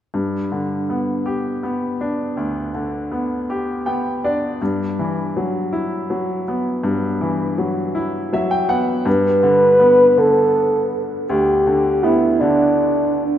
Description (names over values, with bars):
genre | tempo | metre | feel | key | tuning
six-eight pop ballad | 54 BPM (dotted quarters) | 6/8 | straight | G major | A4 = 440 Hz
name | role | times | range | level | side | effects
bright grand piano | accompaniment | 0.1-13.4 s | D2 to G5 | -20 LUFS | left 1 dB | none
breathy flugelhorn | melody | 9.1-13.2 s | D4 to B4 | -14 LUFS | equal | analog delay
room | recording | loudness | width
wet lush hall reverb, RT60 2.7 s | rough home demo mix | -16 LUFS | side -10 dB against mid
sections
0.1-9.1 A section; 9.1-13.4 B section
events
grand piano fill 3.5-4.6, 7.9-9.1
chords
0.1 G; 4.6 Esus2/G; 9.1 G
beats
| 0.15 1.26 | 2.38 3.49 | 4.61 5.72 | 6.83 7.95 | 9.06 10.18 | 11.29 12.40